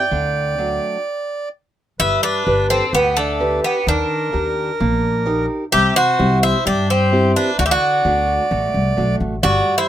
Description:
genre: greek folk, Greek bouzouki band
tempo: 129 BPM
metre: 4/4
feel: straight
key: unclear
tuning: A4 = 437 Hz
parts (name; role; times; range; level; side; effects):
- Greek bouzouki; melody; 0.0-9.9 s; A3 to G5; -18 LUFS; equal; none
- accordion; second line; 0.0-9.9 s; D4 to E5; -23 LUFS; right 2 dB; none
- fingerpicked acoustic archtop guitar; accompaniment; 0.0-9.9 s; C3 to B4; -22 LUFS; right 1 dB; none
- upright bass; bass; 0.1-9.6 s; G1 to G2; -21 LUFS; left 1 dB; none
room: little or no reverb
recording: minimal, uncompressed stereo recording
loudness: -15 LUFS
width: side -11 dB against mid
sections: 0.0-2.0 A section; 2.0-9.9 B section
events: stop 1.1-2.0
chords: 0.1 D; 2.0 G; 3.9 Eb; 5.7 C; 7.6 D

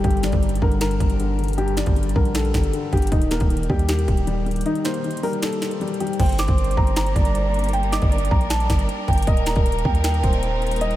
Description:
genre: hip hop, trap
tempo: 156 BPM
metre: 4/4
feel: half-time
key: G minor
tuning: A4 = 440 Hz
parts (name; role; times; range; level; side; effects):
- dark baby grand piano; melody; 0.0-11.0 s; Eb4 to D6; -26 LUFS; equal; low-pass filter, diffuse ambient delay
- dark baby grand piano; accompaniment; 0.0-6.2 s; G2 to Bb3; -27 LUFS; left 4 dB; low-pass filter
- warm 808-style bass; bass; 0.0-11.0 s; Eb1 to Eb2; -22 LUFS; equal; none
- trap drum kit; drums; 0.0-11.0 s; crash cymbal, finger snaps, hi-hat, kick drum, snare drum; -22 LUFS; equal; none
- soft octave-layered synth lead; second line; 6.2-10.8 s; Bb4 to Eb5; -28 LUFS; right 2 dB; chorus, diffuse ambient delay
- rich chamber string section; sustained chords; 6.2-11.0 s; G3 to Bb4; -30 LUFS; left 1 dB; none
room: moderate huge ambient reverb, RT60 8.9 s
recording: dreamy mix soaked in reverb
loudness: -18 LUFS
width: side -14 dB against mid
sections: 0.0-6.2 A section; 6.2-11.0 B section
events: break 4.7-6.2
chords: 0.0 Gm; 3.1 Eb; 6.2 Gm; 9.3 Eb

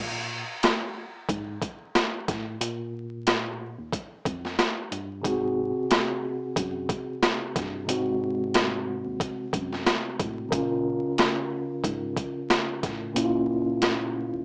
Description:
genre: hip hop, boom-bap hip-hop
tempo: 91 BPM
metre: 4/4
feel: swing 57% on 16ths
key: Bb minor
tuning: A4 = 441 Hz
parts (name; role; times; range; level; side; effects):
- mellow tine electric piano; bass; 0.0-14.4 s; Eb2 to Bb2; -38 LUFS; equal; none
- boom bap sampler-style drum kit; drums; 0.6-14.0 s; hi-hat, kick drum, rim click, snare drum; -28 LUFS; equal; overdrive
- mellow tine electric piano; accompaniment; 5.2-14.4 s; Bb2 to Bb4; -31 LUFS; equal; cassette tape, high-pass filter, low-pass filter
room: moderate studio reverb, RT60 0.5 s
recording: vinyl crackle, small speaker sound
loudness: -28 LUFS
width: mono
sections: 0.0-14.4 A section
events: break 0.0-5.2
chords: 0.0 Bb5; 5.2 Ab7; 10.5 Bbm

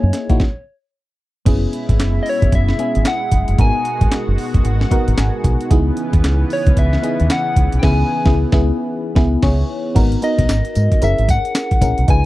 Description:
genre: R&B, new jack swing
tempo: 113 BPM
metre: 4/4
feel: swing 61% on 16ths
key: unclear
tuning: A4 = 440 Hz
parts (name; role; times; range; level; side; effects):
- soft struck synth lead; melody; 0.0-12.3 s; C#5 to G#5; -21 LUFS; left 1 dB; chorus, slapback echo
- FM electric piano with auto-pan; accompaniment; 0.0-12.3 s; A#3 to G#5; -22 LUFS; left 1 dB; phaser
- deep dub fingered electric bass; bass; 0.0-12.3 s; F#1 to G#2; -16 LUFS; equal; none
- breakbeat sampler-style drum kit; drums; 0.1-12.2 s; crash cymbal, handclaps, hi-hat, kick drum, snare drum, tambourine; -16 LUFS; equal; none
- lush unison pad; sustained chords; 1.5-9.9 s; B2 to F#4; -26 LUFS; equal; chorus
room: little or no reverb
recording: dry, close 1970s-style studio recording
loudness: -14 LUFS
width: side -17 dB against mid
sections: 0.0-1.5 A section; 1.5-10.0 B section; 10.0-12.3 C section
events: stop 0.4-1.5; FM electric piano fill 4.6-5.7; band accent 7.8-10.0; break 8.9-10.0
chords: 0.4 N.C.; 1.5 F#9sus4; 3.6 G#m7; 5.7 C#m7; 10.0 G#m7; 11.0 F#7

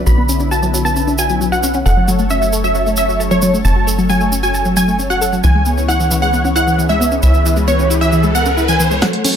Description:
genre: uplifting trance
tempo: 134 BPM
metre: 4/4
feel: straight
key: unclear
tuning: A4 = 438 Hz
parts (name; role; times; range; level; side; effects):
- analog string pad; sustained chords; 0.0-9.4 s; D3 to C#5; -22 LUFS; equal; ensemble chorus, sidechain pumping
- tight sequencer bass; bass; 0.0-9.0 s; F#1 to C#2; -17 LUFS; equal; sidechain pumping
- supersaw stab; melody; 0.1-9.4 s; A4 to B5; -17 LUFS; right 1 dB; sidechain pumping, low-pass filter, tape echo
- wide unison pluck; arpeggios; 0.1-9.3 s; E3 to A4; -18 LUFS; left 3 dB; sidechain pumping, tape echo
- tube shaker; percussion; 0.1-9.3 s; none; -24 LUFS; right 3 dB; none
- riser; sound effects; 6.9-9.4 s; none; -23 LUFS; equal; none
- wide unison pluck; second line; 9.0-9.4 s; F#5; -26 LUFS; right 2 dB; sidechain pumping
- electronic kick drum; drums; 9.0-9.1 s; none; -26 LUFS; equal; none
- punchy analog drum machine; drums; 9.0-9.3 s; congas, hi-hat, snare drum; -14 LUFS; right 1 dB; sidechain pumping on hats, sidechain pumping on perc
room: light reverb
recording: none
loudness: -12 LUFS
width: side -8 dB against mid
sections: 0.0-9.0 A section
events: riser 6.9-9.0, 9.0-9.4; drum fill 9.0-9.4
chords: 0.0 Bmadd9; 1.9 F#m; 5.4 C#m7

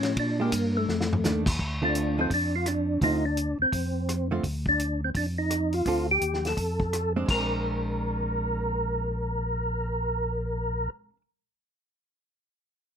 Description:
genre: soul jazz organ trio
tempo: 169 BPM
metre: 4/4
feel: swing 63% on 8ths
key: Bb mixolydian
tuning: A4 = 440 Hz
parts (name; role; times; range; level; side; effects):
- percussive tonewheel organ; melody; 0.0-10.9 s; A3 to Bb4; -27 LUFS; equal; slow rotary speaker, chorus vibrato
- tonewheel organ; bass; 0.0-10.9 s; Bb1 to Bb2; -30 LUFS; equal; overdrive, chorus vibrato, slow rotary speaker
- warm soul drum kit; drums; 0.0-7.4 s; crash cymbal, hi-hat, kick drum, ride cymbal, rim click, snare drum, toms; -32 LUFS; equal; none
- hollow-body jazz guitar; accompaniment; 0.4-11.2 s; D3 to A4; -30 LUFS; right 3 dB; none
room: little or no reverb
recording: close, detailed microphones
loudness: -25 LUFS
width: side -8 dB against mid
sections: 0.0-1.6 A section; 1.6-7.3 B section; 7.3-10.1 C section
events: drum fill 0.9-1.2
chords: 0.2 Bb6; 0.9 F6; 1.6 Dm7; 2.3 Dm/F; 3.0 Dm7; 3.7 F; 4.4 N.C.; 5.2 Dm/F; 5.9 Dm7; 6.6 F; 7.3 Bb9

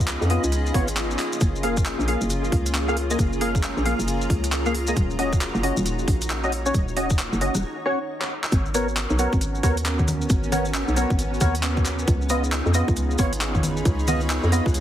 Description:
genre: UK garage, two-step garage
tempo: 135 BPM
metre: 4/4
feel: swing 62% on 16ths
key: G# dorian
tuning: A4 = 439 Hz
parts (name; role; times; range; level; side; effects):
- warm analog pad; sustained chords; 0.0-14.8 s; A#3 to A#4; -33 LUFS; equal; chorus, sidechain pumping
- hollow knocking FM bass; bass; 0.0-14.8 s; D#1 to E#2; -25 LUFS; equal; none
- maracas; percussion; 0.0-14.8 s; none; -34 LUFS; left 2 dB; none
- granular cloud pad; texture; 0.1-14.8 s; B3 to B5; -32 LUFS; equal; built-in reverb, sidechain pumping
- garage drum kit; drums; 0.1-14.8 s; congas, handclaps, hi-hat, rim click; -28 LUFS; equal; none
- percussive organ stab; stabs; 0.3-14.7 s; A#3 to E#5; -27 LUFS; equal; ensemble chorus, dub echo
- electronic kick drum; drums; 0.7-14.7 s; none; -23 LUFS; equal; none
room: light reverb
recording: heavily compressed radio sound, multiband compression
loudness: -20 LUFS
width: side -11 dB against mid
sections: 0.0-8.5 A section; 8.5-14.8 B section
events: break 7.6-8.5; drum fill 8.2-8.5; drop 8.5-14.8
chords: 0.0 C#9; 1.2 F#maj9; 5.0 D#m7; 8.5 G#m11; 12.1 C#9

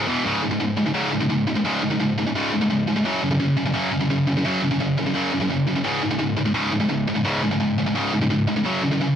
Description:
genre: metal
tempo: 171 BPM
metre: 4/4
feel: straight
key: unclear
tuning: A4 = 442 Hz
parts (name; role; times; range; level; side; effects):
- heavy high-gain guitar; solo; 0.0-9.2 s; C#2 to F#3; -19 LUFS; equal; distortion
room: little or no reverb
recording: dry, close 1970s-style studio recording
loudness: -19 LUFS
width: side -9 dB against mid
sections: 0.2-9.2 A section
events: none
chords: 0.2 C#5; 3.0 F#5; 5.8 C#5; 8.7 F#5

